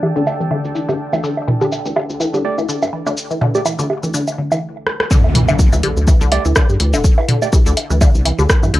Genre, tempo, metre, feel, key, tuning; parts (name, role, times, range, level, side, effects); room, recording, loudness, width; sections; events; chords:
minimal techno; 124 BPM; 4/4; swing 56% on 16ths; A4 = 439 Hz
resonant blip pluck; riff; 0.0-8.8 s; D3 to E3; -21 LUFS; left 2 dB; phaser, sidechain pumping, cassette tape, tape echo
electronic bongos and toms; percussion; 0.0-8.7 s; -19 LUFS; right 2 dB
deep dark ambient pad; texture; 0.0-4.6 s; D4 to A5; -28 LUFS; right 1 dB; chorus, built-in reverb, sidechain pumping, cassette tape
rubbery square bass; bass; 0.2-8.8 s; D1 to G2; -19 LUFS; equal; sidechain pumping, high-pass filter
punchy analog drum machine; drums; 0.2-8.8 s; hi-hat, rim click, shaker; -20 LUFS; left 1 dB
percussive organ stab; stabs; 2.4-7.5 s; A3 to D5; -24 LUFS; right 7 dB; chorus, cassette tape, tape echo
electronic kick drum; drums; 5.1-8.6 s; -12 LUFS; equal
impact; sound effects; 5.1-7.0 s; -21 LUFS; equal
light reverb; home recording on cassette, low-pass filter, faint mains hum; -13 LUFS; side -16 dB against mid
0.0-5.1 A section; 5.1-8.8 B section
filter sweep on drum 0.0-5.1; filter sweep on synth arpeggio sound 0.0-5.1; filter sweep 0.0-5.1; drum fill 4.9; drop 5.1-8.8; impact 5.1-7.0
0.0 Dsus4